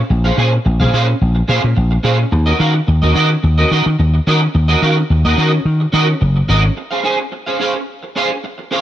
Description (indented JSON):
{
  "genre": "disco",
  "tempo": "108 BPM",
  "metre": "4/4",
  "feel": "straight",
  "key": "unclear",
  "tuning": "A4 = 440 Hz",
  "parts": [
    { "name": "electric guitar at the edge of break-up", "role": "accompaniment", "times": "0.1-8.8 s", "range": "Db4 to Ab5", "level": "-17 LUFS", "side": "right 2 dB", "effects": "ensemble chorus" },
    { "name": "vintage slap bass", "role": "bass", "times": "0.1-6.7 s", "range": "Gb1 to Eb3", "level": "-13 LUFS", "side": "equal", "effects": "none" }
  ],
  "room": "digital ambience",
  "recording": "none",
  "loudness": "-12 LUFS",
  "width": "side -12 dB against mid",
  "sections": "0.0-6.8 A section; 6.8-8.8 B section",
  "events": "none",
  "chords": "0.0 Bbm9; 2.3 Ebm7; 6.8 Dbmaj7"
}